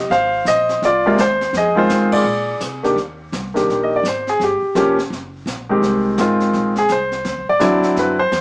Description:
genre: jazz piano trio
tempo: 168 BPM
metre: 4/4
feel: swing 63% on 8ths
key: Eb major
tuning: A4 = 442 Hz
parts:
  - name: clear grand piano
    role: melody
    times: 0.0-8.4 s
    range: C3 to F5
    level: -14 LUFS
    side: equal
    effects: none
  - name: upright bass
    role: bass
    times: 0.0-8.4 s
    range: F1 to C3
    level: -29 LUFS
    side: equal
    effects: none
  - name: jazz brush drum kit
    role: drums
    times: 0.1-8.4 s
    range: brushed snare drum, crash cymbal, hi-hat, kick drum, snare drum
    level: -28 LUFS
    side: equal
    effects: none
room: moderate studio reverb, RT60 0.8 s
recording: band playing live in one room, small speaker sound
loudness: -14 LUFS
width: side -27 dB against mid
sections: 0.0-3.0 A section; 3.0-8.4 B section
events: band accent 2.1; grand piano solo 3.0-8.4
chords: 0.1 Ab69; 1.5 Fm7; 2.3 Bb9; 3.0 Ebmaj7; 4.4 Gm7b5; 5.1 Gb; 5.8 Fm7; 7.3 D9

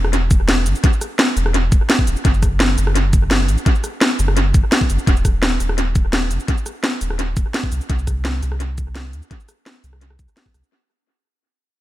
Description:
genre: liquid drum and bass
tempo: 170 BPM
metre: 4/4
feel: straight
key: unclear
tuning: A4 = 441 Hz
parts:
  - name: warm sub bass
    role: bass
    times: 0.0-10.6 s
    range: D#1 to Eb2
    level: -19 LUFS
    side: equal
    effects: none
  - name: drum and bass drum kit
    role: drums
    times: 0.0-10.7 s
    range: hi-hat, rim click, shaker, snare drum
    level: -19 LUFS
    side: equal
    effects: analog delay
  - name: electronic kick drum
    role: drums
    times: 0.3-10.5 s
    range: none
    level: -16 LUFS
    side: equal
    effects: none
room: light reverb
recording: echo-heavy mix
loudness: -15 LUFS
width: side -15 dB against mid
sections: 0.0-10.7 A section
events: drop 0.0-10.7; fade-out 5.1-10.7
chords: none

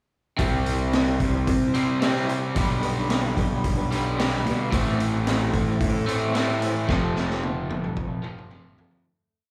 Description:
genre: quiet-loud alternative rock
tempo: 111 BPM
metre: 4/4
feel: straight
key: unclear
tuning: A4 = 439 Hz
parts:
  - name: electric guitar through a small old amp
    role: arpeggios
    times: 0.4-8.9 s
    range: A2 to C5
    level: -34 LUFS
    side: equal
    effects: tremolo, slapback echo
  - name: crunchy overdriven guitar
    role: riff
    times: 0.4-9.5 s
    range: F2 to C4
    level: -30 LUFS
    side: equal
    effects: slapback echo
  - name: fuzz picked electric bass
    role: bass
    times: 0.4-9.0 s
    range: F1 to C3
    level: -29 LUFS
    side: equal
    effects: overdrive
  - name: raw garage drum kit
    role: drums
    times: 0.4-9.0 s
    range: hi-hat, kick drum, snare drum, toms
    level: -29 LUFS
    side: equal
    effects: none
room: small room reverb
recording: live gig heard through the venue's PA, club reverb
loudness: -24 LUFS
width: mono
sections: 0.4-9.1 verse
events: fade-out 6.9-9.1; drum fill 6.9-9.1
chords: 0.4 C; 2.6 G/B; 4.7 Am; 6.9 F

